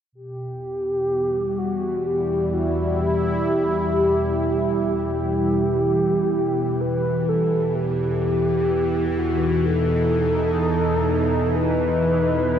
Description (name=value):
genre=ambient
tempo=63 BPM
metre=4/4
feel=straight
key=E harmonic minor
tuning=A4 = 440 Hz
part: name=sweeping resonant pad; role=sustained chords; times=0.1-12.6 s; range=B2 to E4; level=-24 LUFS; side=equal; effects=chorus
part: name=bowed-like drone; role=drone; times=1.0-12.6 s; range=E2 to E3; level=-25 LUFS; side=equal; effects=built-in reverb, phaser
part: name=mellow horn-like synth lead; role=melody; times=0.2-12.6 s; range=F#4 to B4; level=-23 LUFS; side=equal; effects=chorus, tape echo
room=wet huge ambient reverb, RT60 7.7 s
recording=none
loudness=-19 LUFS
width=side -9 dB against mid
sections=0.1-12.6 A section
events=none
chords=0.1 Em; 7.7 B